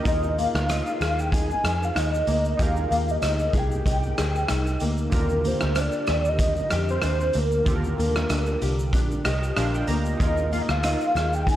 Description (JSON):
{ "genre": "indie pop, bedroom pop", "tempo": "95 BPM", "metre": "4/4", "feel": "swing 55% on 16ths", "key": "unclear", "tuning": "A4 = 440 Hz", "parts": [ { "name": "nylon-string guitar", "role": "accompaniment", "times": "0.0-11.6 s", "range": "Bb3 to Ab4", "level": "-31 LUFS", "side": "left 3 dB", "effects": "ensemble chorus, warbly pitch drift" }, { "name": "warm analog keys", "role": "accompaniment", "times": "0.0-11.6 s", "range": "D3 to Bb5", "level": "-33 LUFS", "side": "right 4 dB", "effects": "chorus" }, { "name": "soft octave-layered synth lead", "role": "melody", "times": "0.1-11.6 s", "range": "Bb4 to Ab5", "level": "-26 LUFS", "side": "equal", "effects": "phaser, ensemble chorus, slapback echo" }, { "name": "vintage muted picked electric bass", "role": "bass", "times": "0.1-11.6 s", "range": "Bb1 to F2", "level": "-26 LUFS", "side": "equal", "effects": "none" }, { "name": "raw garage drum kit", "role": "drums", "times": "0.1-11.6 s", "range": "hi-hat, kick drum, rim click, shaker", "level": "-27 LUFS", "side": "equal", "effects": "none" } ], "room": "light reverb, small room ambience", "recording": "none", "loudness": "-21 LUFS", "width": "side -12 dB against mid", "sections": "0.0-11.6 A section", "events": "synth keys fill 8.9-10.2", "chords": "0.1 Fm11; 5.1 Ebmaj7; 10.2 Fm7", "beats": "| 0.06 0.69 1.32 1.96 | 2.59 3.23 3.86 4.49 | 5.13 5.76 6.39 7.03 | 7.66 8.30 8.93 9.56 | 10.20 10.83 11.47" }